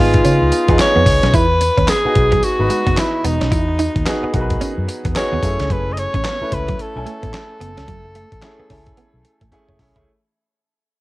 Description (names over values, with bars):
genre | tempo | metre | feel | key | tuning
R&B, new jack swing | 110 BPM | 4/4 | swing 61% on 16ths | F# dorian | A4 = 440 Hz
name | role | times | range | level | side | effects
breathy tenor saxophone | melody | 0.0-9.5 s | D#4 to D#5 | -19 LUFS | equal | cassette tape
clear baby grand piano | accompaniment | 0.0-10.1 s | A3 to G#5 | -22 LUFS | equal | cassette tape
direct-recorded clean electric guitar | riff | 0.0-10.0 s | F#3 to E4 | -24 LUFS | right 4 dB | ensemble chorus, cassette tape
vintage muted fingered electric bass | bass | 0.0-10.0 s | E1 to C#3 | -20 LUFS | equal | none
dusty soul sampler-style drum kit | drums | 0.1-10.1 s | handclaps, hi-hat, kick drum, snare drum, tambourine | -19 LUFS | equal | cassette tape
room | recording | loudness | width
digital ambience | home recording on cassette | -14 LUFS | side -19 dB against mid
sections
0.0-1.3 A section; 1.3-10.1 B section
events
fade-out 1.3-10.1; drum fill 9.5-10.1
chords
0.0 C#7; 1.3 Emaj7; 5.4 F#m7